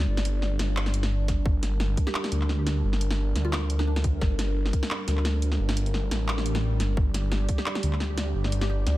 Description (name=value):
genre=half-time drum and bass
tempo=174 BPM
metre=4/4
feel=swing 54% on 16ths, half-time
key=G minor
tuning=A4 = 437 Hz
part: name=dark analog pad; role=sustained chords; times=0.0-9.0 s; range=G3 to D5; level=-34 LUFS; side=equal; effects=chorus, sidechain pumping
part: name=phased detuned saw bass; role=bass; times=0.0-9.0 s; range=G1 to D2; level=-25 LUFS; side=equal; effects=phaser, tube saturation
part: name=drum and bass drum kit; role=drums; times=0.0-8.9 s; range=handclaps, hi-hat, snare drum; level=-32 LUFS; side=equal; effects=studio ambience
part: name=electronic kick drum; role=drums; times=1.3-4.8, 7.0-7.6 s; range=none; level=-25 LUFS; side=equal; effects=overdrive, studio ambience
part: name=mallet-like synth pluck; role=melody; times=2.1-3.9, 7.6-8.8 s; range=D4 to G4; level=-37 LUFS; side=right 1 dB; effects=analog chorus, tape echo
part: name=swell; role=sound effects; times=6.4-7.0 s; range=none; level=-39 LUFS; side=right 3 dB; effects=none
part: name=pulsing gated texture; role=texture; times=7.0-9.0 s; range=G4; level=-40 LUFS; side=right 4 dB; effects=chorus, built-in reverb
room=digital ambience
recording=none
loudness=-24 LUFS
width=side -16 dB against mid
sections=0.0-9.0 A section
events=swell 6.4-7.0; kick drops out 6.6-7.0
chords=0.0 G5